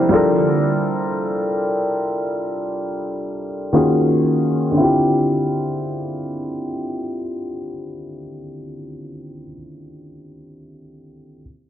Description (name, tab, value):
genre	R&B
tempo	free time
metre	none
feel	none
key	D minor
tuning	A4 = 438 Hz
part	dark baby grand piano	accompaniment	0.0-11.4 s	D3 to C5	-19 LUFS	left 1 dB	none
part	lush unison pad	sustained chords	0.0-0.6 s	D3 to G4	-23 LUFS	right 3 dB	chorus, phaser
room	light reverb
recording	dark, warm production, low-pass filter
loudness	-18 LUFS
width	side -11 dB against mid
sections	0.0-4.8 A section; 4.8-8.9 B section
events	filter sweep 0.0-4.8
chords	0.1 Gm7; 3.7 Ebm11; 4.8 Dm11